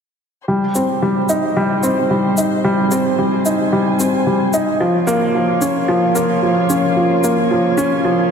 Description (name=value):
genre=piano and strings electronica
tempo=111 BPM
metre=4/4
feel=straight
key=Ab major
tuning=A4 = 440 Hz
part: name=muted string quartet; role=sustained chords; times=0.5-8.3 s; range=Bb3 to Ab5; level=-26 LUFS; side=equal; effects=none
part: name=warm upright piano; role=riff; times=0.5-8.3 s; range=F3 to Eb4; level=-14 LUFS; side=equal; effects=analog delay
part: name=shaker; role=drums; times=0.8-7.9 s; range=none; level=-28 LUFS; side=left 2 dB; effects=small room ambience
room=wet lush hall reverb, RT60 2.4 s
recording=dreamy mix soaked in reverb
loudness=-14 LUFS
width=side -6 dB against mid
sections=0.5-8.3 A section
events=fade-in on string quartet 0.5-8.3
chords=0.5 Abmaj7; 4.8 Db6